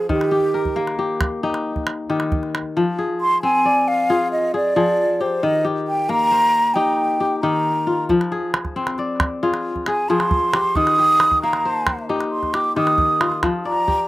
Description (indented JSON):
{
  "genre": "west african traditional, West African string and xylophone music",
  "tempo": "90 BPM (dotted quarters)",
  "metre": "12/8",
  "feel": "straight",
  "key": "unclear",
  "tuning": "A4 = 441 Hz",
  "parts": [
    { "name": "mellow hollow concert flute", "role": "melody", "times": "0.0-14.1 s", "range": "G4 to Eb6", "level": "-18 LUFS", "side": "right 1 dB", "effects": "slapback echo" },
    { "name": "kora", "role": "arpeggios", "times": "0.0-14.1 s", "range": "Eb3 to D5", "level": "-21 LUFS", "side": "left 3 dB", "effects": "slapback echo" },
    { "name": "calabash", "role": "percussion", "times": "0.1-2.6, 8.1-14.0 s", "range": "none", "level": "-24 LUFS", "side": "right 2 dB", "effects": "none" }
  ],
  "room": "light reverb",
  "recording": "recorded outdoors, with no room sound",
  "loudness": "-17 LUFS",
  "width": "side -17 dB against mid",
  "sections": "0.0-2.8 A section; 2.8-13.4 B section",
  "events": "flute solo 2.8-13.4",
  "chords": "0.1 Eb; 2.8 Fm; 5.4 Eb; 8.1 Fm; 10.8 Eb; 13.4 N.C.",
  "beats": "| 0.09 0.76 1.43 2.10 | 2.76 3.43 4.10 4.76 | 5.43 6.09 6.76 7.42 | 8.09 8.76 9.42 10.09 | 10.76 11.42 12.09 12.76 | 13.43"
}